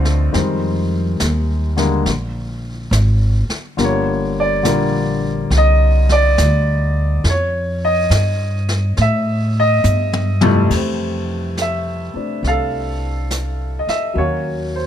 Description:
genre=jazz ballad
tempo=70 BPM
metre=4/4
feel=swing 67% on 8ths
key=F major from 10.7 s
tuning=A4 = 440 Hz
part: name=warm baby grand piano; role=accompaniment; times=0.0-14.9 s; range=F2 to F5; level=-18 LUFS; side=left 1 dB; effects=none
part: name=upright bass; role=bass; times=0.0-14.9 s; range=G1 to A2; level=-17 LUFS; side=equal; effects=none
part: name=jazz brush drum kit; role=drums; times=0.1-14.9 s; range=brushed snare drum, hi-hat, kick drum, ride cymbal, snare drum, toms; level=-25 LUFS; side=left 1 dB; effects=none
room=little or no reverb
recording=close, detailed microphones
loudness=-15 LUFS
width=side -10 dB against mid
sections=0.0-10.7 A section; 10.7-14.9 B section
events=drum fill 9.8-10.7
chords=0.3 Fm7; 2.1 Absus2; 3.8 Gmadd11; 7.2 F7; 10.7 Fmaj9; 14.2 Ebm7

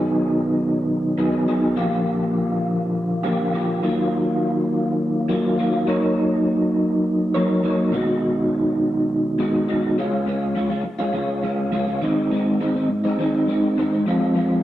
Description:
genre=rock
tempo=205 BPM (eighths)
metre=7/8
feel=straight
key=unclear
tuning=A4 = 439 Hz
part: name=electric guitar through a small old amp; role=solo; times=0.0-14.6 s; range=Ab2 to Db5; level=-18 LUFS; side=equal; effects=rotary speaker, slapback echo
room=wet small room reverb, RT60 0.5 s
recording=band playing live in one room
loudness=-19 LUFS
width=side -13 dB against mid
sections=0.0-10.0 A section; 10.0-14.6 B section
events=none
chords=0.0 B6; 1.8 Bb6; 3.8 Ebmadd9; 5.9 Gb6; 7.9 B6; 10.0 Db; 12.0 Ab; 14.1 Fm

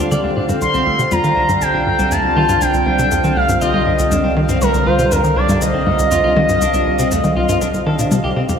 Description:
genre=ambient, sequencer-driven space music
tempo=120 BPM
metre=4/4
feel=straight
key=unclear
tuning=A4 = 440 Hz
part: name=phased analog pad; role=sustained chords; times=0.0-8.6 s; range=D3 to A4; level=-21 LUFS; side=equal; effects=phaser, chorus
part: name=clean electric guitar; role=arpeggios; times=0.0-8.4 s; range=A3 to D5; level=-23 LUFS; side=left 1 dB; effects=auto-pan, low-pass filter, analog delay
part: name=tight sequencer bass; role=riff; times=0.0-8.6 s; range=C2 to Eb3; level=-20 LUFS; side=equal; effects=lush chorus, analog delay
part: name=warm sub bass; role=bass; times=0.0-8.6 s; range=C2 to D2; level=-24 LUFS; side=equal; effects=none
part: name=bubbling stepped-filter texture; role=texture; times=0.0-8.6 s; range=F5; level=-29 LUFS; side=right 1 dB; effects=chorus, built-in reverb
part: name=electronic toms and cabasa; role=percussion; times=0.1-8.6 s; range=none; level=-24 LUFS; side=left 3 dB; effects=analog delay
part: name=expressive portamento lead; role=melody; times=0.6-8.1 s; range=Bb4 to C6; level=-17 LUFS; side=equal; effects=wide subtle chorus, cassette tape, analog delay
room=wet concert hall reverb, RT60 2.3 s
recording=none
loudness=-13 LUFS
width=side -7 dB against mid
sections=0.0-8.6 A section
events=fade-in on drum 0.0-8.6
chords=0.0 Dm7; 0.6 Cm7

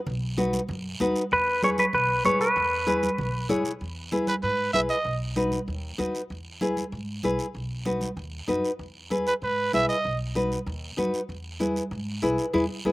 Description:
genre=latin, cumbia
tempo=192 BPM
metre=4/4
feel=straight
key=E major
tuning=A4 = 440 Hz
part: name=upright bass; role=bass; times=0.1-12.9 s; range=B1 to G#2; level=-34 LUFS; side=equal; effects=none
part: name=congas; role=percussion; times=0.1-12.9 s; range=none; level=-32 LUFS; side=right 2 dB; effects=slapback echo
part: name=guiro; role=percussion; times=0.1-12.9 s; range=none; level=-41 LUFS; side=right 2 dB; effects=none
part: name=nylon-string guitar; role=accompaniment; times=0.4-12.9 s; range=D#4 to C#5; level=-26 LUFS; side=left 1 dB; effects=slapback echo
part: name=clean electric guitar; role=melody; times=1.3-3.5 s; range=B4 to C#5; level=-23 LUFS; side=equal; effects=spring reverb
part: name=growling trumpet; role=second line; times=4.3-5.2, 9.3-10.2 s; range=B4 to E5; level=-24 LUFS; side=right 2 dB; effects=none
room=little or no reverb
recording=recorded outdoors, with no room sound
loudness=-24 LUFS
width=side -19 dB against mid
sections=0.0-3.8 A section; 3.8-12.9 B section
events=trumpet solo 3.8-12.9; band accent 12.5-12.9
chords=0.0 B; 1.3 E; 5.1 B; 6.3 E; 7.5 B; 8.8 E; 10.0 B; 11.3 E

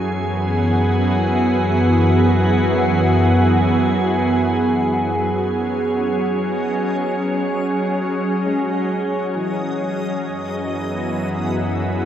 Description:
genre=ambient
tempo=67 BPM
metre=3/4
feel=straight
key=unclear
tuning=A4 = 441 Hz
part: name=soft additive organ-like pad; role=sustained chords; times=0.0-12.1 s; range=F#2 to G#4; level=-17 LUFS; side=equal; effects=ensemble chorus, built-in reverb
part: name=backwards swelling texture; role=texture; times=6.5-12.1 s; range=D#5 to D#6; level=-34 LUFS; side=left 2 dB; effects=built-in reverb
part: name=felt-muted upright piano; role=arpeggios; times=8.5-12.1 s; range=E3 to G#5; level=-34 LUFS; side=left 1 dB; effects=tape echo
room=wet huge ambient reverb, RT60 8.7 s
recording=dark, warm production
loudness=-16 LUFS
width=side -10 dB against mid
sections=0.0-4.9 A section; 4.9-12.1 B section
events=fade-in on felt piano 4.9-12.1; fade-in on synth texture 4.9-12.1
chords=0.0 Eadd9/F#; 4.9 F#sus2; 10.2 Emaj9/F#

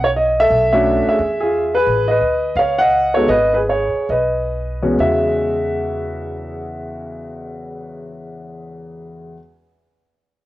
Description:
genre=jazz piano trio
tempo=123-176 BPM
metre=4/4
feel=swing 64% on 8ths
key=E major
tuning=A4 = 440 Hz
part: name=warm grand piano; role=melody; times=0.0-9.4 s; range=E2 to F#5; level=-16 LUFS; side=equal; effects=cassette tape
part: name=upright bass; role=bass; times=0.0-9.3 s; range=G#1 to E2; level=-27 LUFS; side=equal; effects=tube saturation
room=moderate spring reverb, RT60 2.1 s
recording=home recording on cassette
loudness=-14 LUFS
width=side -15 dB against mid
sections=0.0-1.9 A section; 1.9-5.0 B section; 5.0-8.9 C section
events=slowing down 1.9-5.0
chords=0.0 E5; 1.2 E; 1.9 Asus2; 2.6 C#5; 3.3 G#m; 4.1 B; 5.0 E69

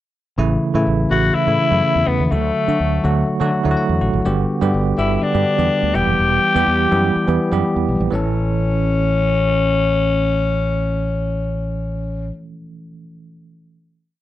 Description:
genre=pop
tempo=124 BPM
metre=4/4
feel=straight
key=A mixolydian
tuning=A4 = 440 Hz
part: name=bell-like tine electric piano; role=accompaniment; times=0.4-14.2 s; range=C#3 to F#5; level=-20 LUFS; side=right 2 dB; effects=medium stereo tremolo
part: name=fretless electric bass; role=bass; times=0.4-12.3 s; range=E1 to D3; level=-20 LUFS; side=equal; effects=none
part: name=raspy tenor saxophone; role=melody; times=1.1-12.3 s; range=A3 to G4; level=-19 LUFS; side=left 4 dB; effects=slapback echo
room=moderate booth ambience, RT60 0.2 s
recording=dry, close 1970s-style studio recording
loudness=-15 LUFS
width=side -14 dB against mid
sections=0.4-8.1 verse; 8.1-12.0 final chord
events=none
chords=0.4 A; 2.3 D; 4.3 G; 5.9 Em; 8.1 A

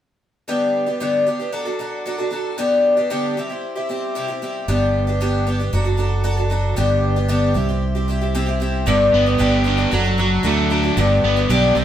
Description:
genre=rock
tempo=114 BPM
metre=4/4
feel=straight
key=G major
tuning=A4 = 442 Hz
part: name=picked twelve-string acoustic guitar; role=accompaniment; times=0.5-11.8 s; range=G2 to A4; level=-19 LUFS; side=left 1 dB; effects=none
part: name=fingered electric bass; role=bass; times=4.7-11.8 s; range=F#1 to D2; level=-19 LUFS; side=right 1 dB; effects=none
part: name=overdriven electric guitar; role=riff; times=8.9-11.8 s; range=G2 to G4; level=-19 LUFS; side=right 1 dB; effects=none
room=wet stone room reverb, RT60 1.4 s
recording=band playing live in one room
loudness=-17 LUFS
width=side -10 dB against mid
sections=0.5-8.9 A section; 8.9-11.8 B section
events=none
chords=0.5 G; 1.5 D/F#; 2.6 G; 3.4 C; 4.7 G; 5.7 D/F#; 6.8 G; 7.6 C; 8.9 G; 9.9 D/F#; 11.0 G

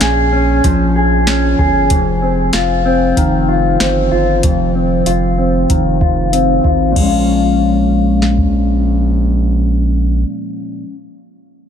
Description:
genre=dream pop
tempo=95 BPM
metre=4/4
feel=straight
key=Bb dorian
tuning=A4 = 440 Hz
part: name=mellow electric guitar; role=arpeggios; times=0.0-11.0 s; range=F2 to Ab4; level=-14 LUFS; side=left 1 dB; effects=lush chorus, low-pass filter, ping-pong delay
part: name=round analog bass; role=bass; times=0.0-10.2 s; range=F1 to Bb1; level=-16 LUFS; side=equal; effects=none
part: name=soft vintage rhythm box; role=drums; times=0.0-8.5 s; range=crash cymbal, hi-hat, kick drum, snare drum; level=-17 LUFS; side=equal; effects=none
room=light reverb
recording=none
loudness=-11 LUFS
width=side -8 dB against mid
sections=0.0-7.0 A section; 7.0-9.5 B section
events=filter sweep on clean electric guitar 0.0-7.0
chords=0.0 Bbm7; 1.9 Fm7; 7.0 Bbm7

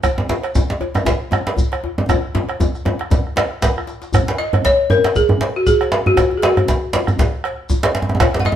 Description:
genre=west african traditional, West African drum ensemble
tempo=118 BPM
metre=4/4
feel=swing 56% on 16ths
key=F# major pentatonic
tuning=A4 = 441 Hz
part: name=bombo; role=percussion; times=0.0-8.3 s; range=none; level=-21 LUFS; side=right 1 dB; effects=none
part: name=cowbell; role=percussion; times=0.0-8.3 s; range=none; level=-27 LUFS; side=right 3 dB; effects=none
part: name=djembe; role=percussion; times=0.0-8.6 s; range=none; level=-24 LUFS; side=left 4 dB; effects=none
part: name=shekere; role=percussion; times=0.0-8.3 s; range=none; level=-29 LUFS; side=left 1 dB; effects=none
part: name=djembe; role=percussion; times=0.2-8.6 s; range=none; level=-18 LUFS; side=right 1 dB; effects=none
part: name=balafon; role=melody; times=4.4-8.6 s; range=F#4 to F#5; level=-16 LUFS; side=left 1 dB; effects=none
room=moderate studio reverb, RT60 0.9 s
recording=band playing live in one room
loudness=-15 LUFS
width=side -10 dB against mid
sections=0.0-4.1 A section; 4.1-8.6 B section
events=drum fill 2.1-4.1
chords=none

